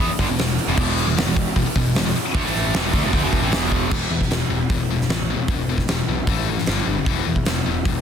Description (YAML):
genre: hard rock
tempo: 153 BPM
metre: 4/4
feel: straight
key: E minor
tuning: A4 = 442 Hz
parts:
  - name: cranked stack guitar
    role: riff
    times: 0.0-3.9 s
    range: E2 to B3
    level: -25 LUFS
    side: right 12 dB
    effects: overdrive
  - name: scooped high-gain guitar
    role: riff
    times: 0.0-8.0 s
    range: E2 to B3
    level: -24 LUFS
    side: left 10 dB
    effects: distortion
  - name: fuzz picked electric bass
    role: bass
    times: 0.0-8.0 s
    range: E1 to E2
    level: -25 LUFS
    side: equal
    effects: overdrive
  - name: huge arena drum kit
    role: drums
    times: 0.0-7.9 s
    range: crash cymbal, hi-hat, kick drum, snare drum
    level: -22 LUFS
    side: right 1 dB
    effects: none
room: light reverb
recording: dense, heavily limited modern master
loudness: -18 LUFS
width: side -8 dB against mid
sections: 0.0-3.9 A section; 3.9-8.0 B section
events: drum fill 3.7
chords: 0.0 E5; 6.3 A5; 6.7 G5; 7.1 E5